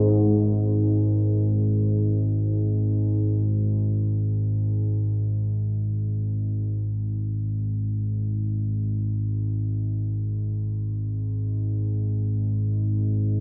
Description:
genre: ambient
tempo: free time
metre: none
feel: none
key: unclear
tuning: A4 = 445 Hz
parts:
  - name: deep rumbling drone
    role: solo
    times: 0.0-13.4 s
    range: G#1 to G#2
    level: -22 LUFS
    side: equal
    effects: built-in reverb
room: little or no reverb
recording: echo-heavy mix, telephone sound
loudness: -22 LUFS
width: side -34 dB against mid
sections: 0.1-13.4 A section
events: none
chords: none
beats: free time

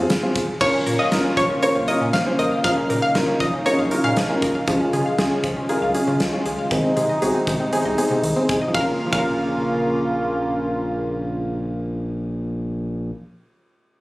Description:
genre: synth-pop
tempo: 118 BPM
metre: 4/4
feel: straight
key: Bb minor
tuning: A4 = 440 Hz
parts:
  - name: dark baby grand piano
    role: accompaniment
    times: 0.0-13.1 s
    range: C4 to C5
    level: -24 LUFS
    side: equal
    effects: none
  - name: rubbery square bass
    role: bass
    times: 0.0-13.1 s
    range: F1 to Db3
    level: -28 LUFS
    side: equal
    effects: none
  - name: huge arena drum kit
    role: drums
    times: 0.1-9.3 s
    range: crash cymbal, hi-hat, kick drum, ride cymbal, snare drum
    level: -27 LUFS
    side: equal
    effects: none
  - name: analog pluck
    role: second line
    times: 0.6-4.2, 8.7-10.2 s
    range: Db5 to F5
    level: -22 LUFS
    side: equal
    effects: chorus, tape echo
  - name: warm analog pad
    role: sustained chords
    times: 0.6-12.7 s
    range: C3 to F4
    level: -24 LUFS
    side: equal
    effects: chorus
  - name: analog pluck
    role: arpeggios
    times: 0.6-13.2 s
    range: Eb3 to F5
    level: -25 LUFS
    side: left 1 dB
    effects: chorus, tape echo
room: moderate lush hall reverb, RT60 1.9 s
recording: recorded on a phone in the room, studio reverb, compression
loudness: -18 LUFS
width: side -19 dB against mid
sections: 0.6-8.7 A section; 8.7-12.8 B section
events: none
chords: 0.0 Fm; 0.6 Bbm; 4.7 Db; 6.7 Ab/C; 8.7 Bbm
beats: 0.10 | 0.61 1.12 1.62 2.13 | 2.64 3.15 3.66 4.17 | 4.68 5.18 5.69 6.20 | 6.71 7.22 7.73 8.24 | 8.74 9.25 9.76 10.27 | 10.78 11.29 11.79 12.30

